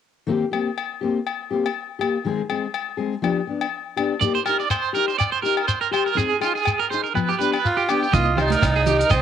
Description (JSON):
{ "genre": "highlife guitar band", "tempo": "122 BPM", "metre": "4/4", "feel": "swing 55% on 16ths", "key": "C minor", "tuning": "A4 = 441 Hz", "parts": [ { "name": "fingerpicked steel-string acoustic guitar", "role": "accompaniment", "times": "0.3-9.0 s", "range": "Eb3 to Ab4", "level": "-24 LUFS", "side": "left 6 dB", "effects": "none" }, { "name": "agogo bells", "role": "percussion", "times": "0.5-9.2 s", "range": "none", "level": "-28 LUFS", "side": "left 9 dB", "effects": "none" }, { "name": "electric guitar at the edge of break-up", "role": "arpeggios", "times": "4.2-9.2 s", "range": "F4 to Eb5", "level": "-22 LUFS", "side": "right 9 dB", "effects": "tremolo, tape echo" }, { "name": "shekere", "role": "percussion", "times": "4.2-9.2 s", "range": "none", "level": "-28 LUFS", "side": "left 2 dB", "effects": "none" }, { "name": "growling tenor saxophone", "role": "melody", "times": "7.7-9.2 s", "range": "C4 to G4", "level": "-22 LUFS", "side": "right 2 dB", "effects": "cassette tape" }, { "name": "hollow-body short-scale fingered electric bass", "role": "bass", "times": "8.1-9.2 s", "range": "C2", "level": "-22 LUFS", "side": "right 2 dB", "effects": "none" }, { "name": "damped 70s drum kit", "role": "drums", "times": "8.1-9.2 s", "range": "hi-hat, kick drum, rim click", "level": "-24 LUFS", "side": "right 2 dB", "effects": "cassette tape" }, { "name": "congas", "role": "percussion", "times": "8.4-9.0 s", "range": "none", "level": "-28 LUFS", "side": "right 10 dB", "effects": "none" } ], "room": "moderate spring reverb, RT60 1.7 s", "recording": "home recording on cassette", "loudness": "-20 LUFS", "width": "side -9 dB against mid", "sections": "0.3-8.1 A section; 8.1-9.2 B section", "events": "none", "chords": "0.3 C7(no3); 2.2 Ab/Eb; 3.2 G7; 4.2 Cm7; 6.2 Fm7; 7.2 G7; 8.1 Cm7" }